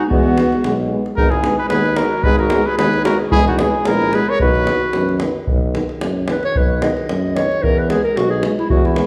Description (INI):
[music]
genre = balkan folk, Balkan brass band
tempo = 112 BPM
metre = 2/4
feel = swing 54% on 16ths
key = B major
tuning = A4 = 440 Hz
[part]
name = mellow cornet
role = melody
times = 0.0-5.2 s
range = F#4 to C#5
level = -22 LUFS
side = equal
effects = none
[part]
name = dark clarinet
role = second line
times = 0.0-9.1 s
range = B3 to D#5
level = -23 LUFS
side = equal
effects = none
[part]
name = clear euphonium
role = accompaniment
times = 0.1-9.1 s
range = B3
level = -29 LUFS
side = equal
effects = none
[part]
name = warm trombone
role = accompaniment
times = 0.1-9.1 s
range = D#3 to G#3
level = -26 LUFS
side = equal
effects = none
[part]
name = clear tuba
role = bass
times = 0.1-9.0 s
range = E1 to F#2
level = -24 LUFS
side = equal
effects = none
[part]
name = davul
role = percussion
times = 0.1-9.1 s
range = none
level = -22 LUFS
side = equal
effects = none
[sound]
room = wet recital hall reverb, RT60 1.6 s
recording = heard from further back in the room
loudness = -17 LUFS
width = mono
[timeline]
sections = 0.0-5.5 A section; 5.5-9.1 B section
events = clarinet solo 5.5-9.1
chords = 0.0 E; 1.2 G#m; 3.3 E; 4.4 B; 7.6 E